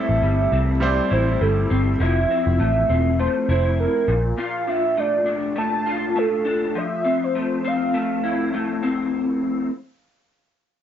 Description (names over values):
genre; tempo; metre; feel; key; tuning
indie pop, bedroom pop; 101 BPM; 4/4; swing 55% on 16ths; F major; A4 = 440 Hz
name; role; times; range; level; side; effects
warm velvety synth lead; melody; 0.0-8.5 s; A4 to A5; -23 LUFS; right 2 dB; analog chorus, analog delay
bright upright piano; accompaniment; 0.0-2.0 s; G3 to C5; -27 LUFS; right 4 dB; none
electric guitar through a small old amp; accompaniment; 0.0-9.7 s; A2 to F4; -23 LUFS; left 2 dB; ensemble chorus, warbly pitch drift
vintage muted picked electric bass; bass; 0.1-4.3 s; E1 to C2; -20 LUFS; equal; none
room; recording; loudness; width
light reverb; nothing above 7.6 kHz; -19 LUFS; side -9 dB against mid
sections
0.0-9.1 A section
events
none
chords
0.0 Am7; 2.0 Fmaj7; 4.1 Bbmaj7; 6.8 Fmaj7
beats
0.22 0.82 1.41 | 2.00 2.60 3.19 3.78 | 4.38 4.97 5.57 6.16 | 6.75 7.35 7.94 8.53